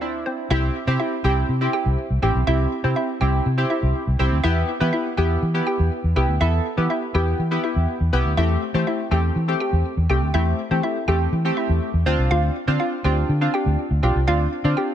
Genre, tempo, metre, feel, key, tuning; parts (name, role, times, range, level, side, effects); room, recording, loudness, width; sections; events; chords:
dance-pop; 122 BPM; 4/4; straight; A4 = 440 Hz
chorused retro synth keys; accompaniment; 0.0-14.9 s; A3 to A4; -24 LUFS; equal
vintage muted fingered electric bass; bass; 0.0-14.7 s; A1 to E3; -20 LUFS; equal
hollow square pluck; melody; 0.3-14.9 s; B3 to G5; -26 LUFS; equal; chorus, ping-pong delay
light reverb; -19 LUFS; side -10 dB against mid
0.5-14.9 A section
0.0 D7(no3); 0.5 C; 4.4 Em; 8.4 Am7; 12.1 Dm7